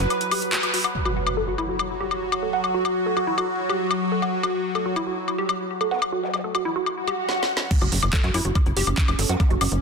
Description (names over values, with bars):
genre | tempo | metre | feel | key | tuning
psychedelic trance | 142 BPM | 4/4 | straight | F# phrygian | A4 = 440 Hz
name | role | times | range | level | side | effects
evolving wavetable pad | sustained chords | 0.0-9.8 s | F#3 to B4 | -27 LUFS | equal | phaser, built-in reverb, sidechain pumping
woody wave-folded pluck | riff | 0.0-9.5 s | E4 to F#5 | -28 LUFS | moving between left 6 dB and right 7 dB | chorus, auto-pan, sidechain pumping, ping-pong delay
tight sequencer bass | bass | 0.0-0.1, 7.8-9.8 s | F#1 to F#2 | -24 LUFS | equal | none
garage drum kit | drums | 0.0-9.8 s | crash cymbal, handclaps, hi-hat, snare drum, woodblock | -26 LUFS | left 3 dB | overdrive
impact and swell | sound effects | 0.9-2.6, 7.0-9.4 s | none | -29 LUFS | equal | none
vowel-sweep wobble bass | second line | 5.9-6.4, 9.3-9.5 s | F#3 to B3 | -38 LUFS | right 2 dB | wide subtle chorus, sidechain pumping, high-pass filter, ping-pong delay
electronic kick drum | drums | 7.7-9.5 s | none | -20 LUFS | equal | overdrive
room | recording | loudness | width
moderate lush hall reverb, RT60 1.6 s | dense, heavily limited modern master | -21 LUFS | side -5 dB against mid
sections
0.9-7.7 A section; 7.7-9.8 B section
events
band accent 0.5; impact 0.9-2.6, 7.7-9.4; filter sweep on synth arpeggio sound 0.9-7.7; swell 7.0-7.7; drum fill 7.3-7.7; drop 7.7-9.8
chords
0.0 F#sus4; 0.9 N.C.; 7.7 F#5